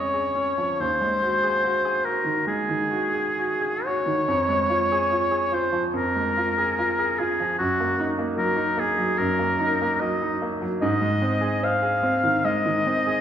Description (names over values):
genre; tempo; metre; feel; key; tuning
classical, romantic duo for oboe and grand piano; 62-77 BPM; 4/4; rubato; Db major; A4 = 440 Hz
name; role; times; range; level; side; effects
warm oboe; melody; 0.0-13.2 s; Gb4 to F5; -23 LUFS; left 1 dB; none
bright grand piano; accompaniment; 0.0-13.2 s; Eb2 to Db5; -25 LUFS; right 1 dB; none
room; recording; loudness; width
wet recital hall reverb, RT60 1.6 s; heard from further back in the room; -21 LUFS; side -9 dB against mid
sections
0.0-13.2 A section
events
none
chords
0.0 Db/F; 0.8 Ab7/Eb; 4.3 Db/F; 7.6 Ebm/Gb; 10.8 Ab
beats
| 0.80 1.64 2.48 3.38 | 4.27 5.11 5.94 6.78 | 7.58 8.37 9.18 10.00 | 10.82 11.64 12.46